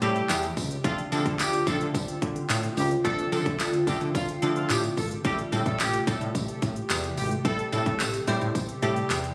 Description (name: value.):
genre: dance-pop.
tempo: 109 BPM.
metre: 4/4.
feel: straight.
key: A minor.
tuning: A4 = 439 Hz.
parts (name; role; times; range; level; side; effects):
warm horn section; melody; 0.0-9.2 s; F4 to A4; -34 LUFS; equal; sidechain pumping, dub echo.
wavetable chord stab; accompaniment; 0.0-9.3 s; F3 to C5; -34 LUFS; equal; sidechain pumping.
glassy FM pad; sustained chords; 0.0-9.3 s; C3 to G4; -35 LUFS; equal; ensemble chorus, built-in reverb, sidechain pumping.
woody fretless electric bass; bass; 0.0-9.3 s; G#1 to D3; -33 LUFS; equal; sidechain pumping.
pop drum kit; drums; 0.0-9.3 s; handclaps, hi-hat, kick drum; -33 LUFS; equal; none.
tambourine; percussion; 0.0-9.2 s; none; -39 LUFS; equal; none.
downlifter; sound effects; 0.0-0.8 s; none; barely audible; none; none.
room: light reverb.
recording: recorded on a phone in the room, studio reverb.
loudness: -27 LUFS.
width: mono.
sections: 0.0-9.3 A section.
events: none.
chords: 0.0 Am7; 0.8 Dm7; 5.2 Am7.